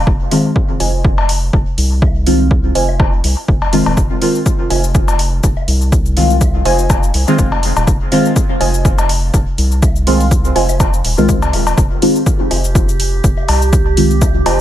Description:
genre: dub techno.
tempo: 123 BPM.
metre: 4/4.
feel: swing 55% on 16ths.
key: F minor.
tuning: A4 = 439 Hz.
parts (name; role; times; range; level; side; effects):
round analog bass; bass; 0.0-14.6 s; Eb1 to C2; -16 LUFS; equal; sidechain pumping.
electronic kick drum; drums; 0.1-14.3 s; none; -14 LUFS; equal; overdrive.
deep mellow chord stab; stabs; 0.3-14.2 s; Eb3 to F4; -16 LUFS; equal; chorus, phaser, sidechain pumping, dub echo.
electronic hi-hat and cabasa; drums; 0.3-14.6 s; none; -23 LUFS; left 1 dB; overdrive.
woodblock and cowbell; percussion; 0.3-14.6 s; none; -22 LUFS; left 4 dB; sidechain pumping on perc, dub echo.
warbly dusty pluck; riff; 0.8-14.6 s; F4 to Ab5; -20 LUFS; right 2 dB; chorus, sidechain pumping, dub echo.
drifting glass-harmonics texture; texture; 12.5-14.6 s; G4; -22 LUFS; right 10 dB; chorus, built-in reverb, sidechain pumping.
room: light reverb, digital ambience.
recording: none.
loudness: -11 LUFS.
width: side -12 dB against mid.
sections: 0.0-11.8 A section; 11.8-14.6 A section.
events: none.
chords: 0.0 Fm7.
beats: | 0.07 0.56 1.04 1.53 | 2.02 2.51 3.00 3.48 | 3.97 4.46 4.95 5.44 | 5.92 6.41 6.90 7.39 | 7.88 8.36 8.85 9.34 | 9.83 10.31 10.80 11.29 | 11.78 12.27 12.75 13.24 | 13.73 14.22.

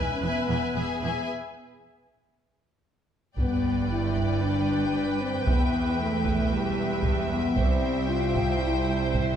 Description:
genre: cinematic, epic orchestral film score.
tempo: 114 BPM.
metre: 4/4.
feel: straight.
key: G major from 3.4 s.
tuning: A4 = 440 Hz.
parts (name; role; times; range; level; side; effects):
warm symphonic violin section; melody; 0.0-9.4 s; G5 to G#5; -35 LUFS; left 5 dB; none.
rich symphonic violin section; second line; 0.0-9.4 s; B4 to E5; -35 LUFS; left 1 dB; none.
clear studio viola section; accompaniment; 0.0-9.4 s; G#4 to C5; -35 LUFS; right 3 dB; none.
mellow French horn section; sustained chords; 0.0-9.4 s; G3 to F4; -28 LUFS; left 3 dB; none.
rich symphonic cello section; bass; 0.0-9.4 s; C2 to G2; -31 LUFS; right 5 dB; none.
warm symphonic double bass section; bass; 0.0-9.4 s; E1 to C2; -32 LUFS; right 5 dB; none.
taiko ensemble; drums; 3.4-9.4 s; none; -29 LUFS; right 1 dB; none.
sub drop; sound effects; 3.5-5.5 s; none; -37 LUFS; equal; none.
room: wet recital hall reverb, RT60 1.5 s.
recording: none.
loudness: -23 LUFS.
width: side -9 dB against mid.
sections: 0.0-3.4 A section; 3.4-9.4 B section.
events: break 1.3-3.4; impact 3.4-5.5.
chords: 0.0 E; 1.3 N.C.; 3.4 G; 5.5 Em; 7.6 C.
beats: 0.23 0.75 | 1.28 1.80 2.33 2.85 | 3.38 3.90 4.42 4.95 | 5.47 6.00 6.52 7.05 | 7.57 8.10 8.62 9.14.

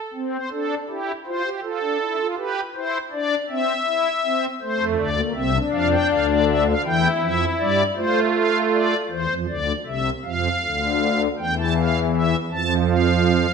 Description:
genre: classical, baroque-style 3-part fugue for pipe organ.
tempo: 54 BPM (dotted quarters).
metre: 6/8.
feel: straight.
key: F major.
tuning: A4 = 438 Hz.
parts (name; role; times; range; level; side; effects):
pipe organ, strings celeste; solo; 0.1-13.5 s; C2 to A5; -19 LUFS; equal; none.
room: wet recital hall reverb, RT60 1.3 s.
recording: minimal, uncompressed stereo recording.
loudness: -19 LUFS.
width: side -5 dB against mid.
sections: 0.0-9.1 A section; 9.1-13.5 B section.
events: none.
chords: 0.1 C; 1.3 F; 2.4 G; 3.5 C; 4.6 F; 5.7 Dmadd9; 6.8 Em7; 8.0 F/A; 9.1 C; 10.2 Dm; 11.4 Emadd11; 12.5 F.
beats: | 0.14 1.26 | 2.38 3.49 | 4.61 5.72 | 6.84 7.97 | 9.11 10.25 | 11.38 12.50.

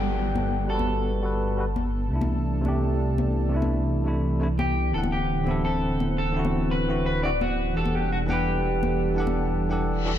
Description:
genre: liquid drum and bass.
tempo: 170 BPM.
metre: 4/4.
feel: straight.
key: G major.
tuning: A4 = 440 Hz.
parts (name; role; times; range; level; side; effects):
electric guitar at the edge of break-up; melody; 0.0-1.9, 4.6-10.2 s; F#4 to D5; -29 LUFS; equal; ping-pong delay.
barky tine electric piano; accompaniment; 0.0-10.1 s; C3 to F#5; -28 LUFS; equal; low-pass filter.
lush unison pad; sustained chords; 0.0-10.2 s; E3 to F#5; -31 LUFS; right 1 dB; chorus.
dark detuned saw bass; bass; 0.0-10.2 s; D1 to C2; -27 LUFS; equal; none.
downlifter and reverse cymbal; sound effects; 0.0-2.1, 10.0-10.2 s; none; -36 LUFS; equal; none.
congas; percussion; 0.4-9.3 s; none; -33 LUFS; left 4 dB; none.
room: light reverb, digital ambience.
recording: dark, warm production.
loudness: -22 LUFS.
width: side -10 dB against mid.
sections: 0.0-10.2 A section.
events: filter sweep on tine electric piano 0.0-10.2; reverse cymbal 10.0.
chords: 0.0 Gmaj9; 2.1 C69; 4.9 D9; 7.8 Em11.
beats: 0.00 0.36 | 0.71 1.06 1.42 1.77 | 2.12 2.47 2.83 3.18 | 3.53 3.88 4.24 4.59 | 4.94 5.30 5.65 6.00 | 6.36 6.71 7.06 7.42 | 7.77 8.12 8.47 8.83 | 9.18 9.53 9.88.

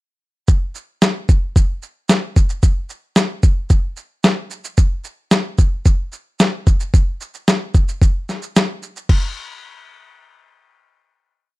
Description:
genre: pop.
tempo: 112 BPM.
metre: 4/4.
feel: straight.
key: none.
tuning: none.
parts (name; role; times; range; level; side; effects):
dusty soul sampler-style drum kit; drums; 0.5-9.2 s; crash cymbal, kick drum, shaker, snare drum; -14 LUFS; equal; overdrive.
room: little or no reverb.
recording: dry, close 1970s-style studio recording.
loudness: -15 LUFS.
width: side -21 dB against mid.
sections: 0.5-9.1 chorus; 9.1-11.2 final hit.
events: none.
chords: none.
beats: | 0.48 1.02 1.55 2.09 | 2.63 3.17 3.70 4.24 | 4.78 5.32 5.86 6.40 | 6.93 7.47 8.01 8.55 | 9.09.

